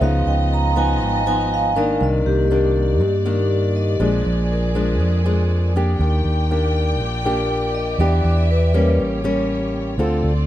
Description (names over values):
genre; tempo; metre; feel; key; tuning
bossa nova; 120 BPM; 4/4; straight; unclear; A4 = 440 Hz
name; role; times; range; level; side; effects
nylon-string guitar; accompaniment; 0.0-10.5 s; F2 to A4; -22 LUFS; left 2 dB; none
vibraphone with medium hard mallets; accompaniment; 0.0-9.0 s; G4 to Bb5; -22 LUFS; right 1 dB; none
warm studio string section; sustained chords; 0.0-10.5 s; Bb3 to G5; -29 LUFS; left 2 dB; none
fingered electric bass; bass; 0.0-10.5 s; G#1 to G2; -19 LUFS; equal; none
room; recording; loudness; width
little or no reverb; close, detailed microphones; -16 LUFS; side -13 dB against mid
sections
0.0-10.5 A section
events
vibraphone solo 0.0-10.5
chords
0.0 C#9; 2.0 Cm9; 4.0 Bb7; 6.0 Ebmaj7; 8.0 Em7; 9.0 A7b9